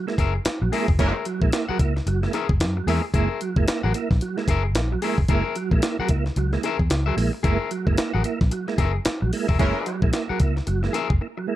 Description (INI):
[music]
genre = funk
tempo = 112 BPM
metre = 4/4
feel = swing 60% on 16ths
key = F# mixolydian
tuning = A4 = 440 Hz
[part]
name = tonewheel organ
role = stabs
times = 0.0-11.6 s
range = F#3 to E4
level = -27 LUFS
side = right 6 dB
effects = chorus vibrato, fast rotary speaker, slapback echo, plate reverb
[part]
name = electric guitar at the edge of break-up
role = accompaniment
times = 0.1-11.4 s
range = G#4 to F#5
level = -29 LUFS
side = left 8 dB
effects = plate reverb
[part]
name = breakbeat sampler-style drum kit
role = drums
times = 0.1-11.2 s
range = hi-hat, kick drum, snare drum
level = -24 LUFS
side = equal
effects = none
[part]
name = vintage muted fingered electric bass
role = bass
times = 0.2-11.2 s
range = E#1 to F#2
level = -24 LUFS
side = equal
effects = none
[part]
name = warm horn section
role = second line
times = 1.0-1.1, 9.6-10.0 s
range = E3 to A#4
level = -29 LUFS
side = right 1 dB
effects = plate reverb
[sound]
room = little or no reverb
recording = dark, warm production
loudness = -20 LUFS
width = side -14 dB against mid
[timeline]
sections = 0.0-11.6 A section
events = band accent 1.0-3.1, 9.6-11.6; break 11.2-11.6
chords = 0.0 F#9